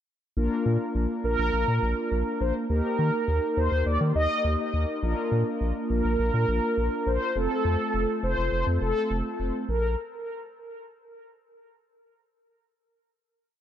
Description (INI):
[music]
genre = synth-pop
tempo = 103 BPM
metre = 4/4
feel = straight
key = Bb major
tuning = A4 = 436 Hz
[part]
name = mellow synth brass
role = accompaniment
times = 0.4-9.6 s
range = A3 to Bb4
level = -29 LUFS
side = left 1 dB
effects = chorus
[part]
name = round analog bass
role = bass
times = 0.4-10.0 s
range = F1 to Eb3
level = -26 LUFS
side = equal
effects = none
[part]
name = mellow synth brass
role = melody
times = 1.2-10.0 s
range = A4 to Eb5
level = -28 LUFS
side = equal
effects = chorus, analog delay
[sound]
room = moderate echo chamber reverb, RT60 1.4 s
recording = echo-heavy mix, nothing above 10.7 kHz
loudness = -24 LUFS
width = side -10 dB against mid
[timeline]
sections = 0.4-9.7 verse; 9.7-12.0 final note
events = none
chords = 0.4 Bb; 2.7 Eb; 5.0 Bb; 7.4 F; 9.7 N.C.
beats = | 0.37 0.95 1.53 2.12 | 2.70 3.28 3.86 4.45 | 5.03 5.61 6.19 6.78 | 7.36 7.94 8.52 9.11 | 9.69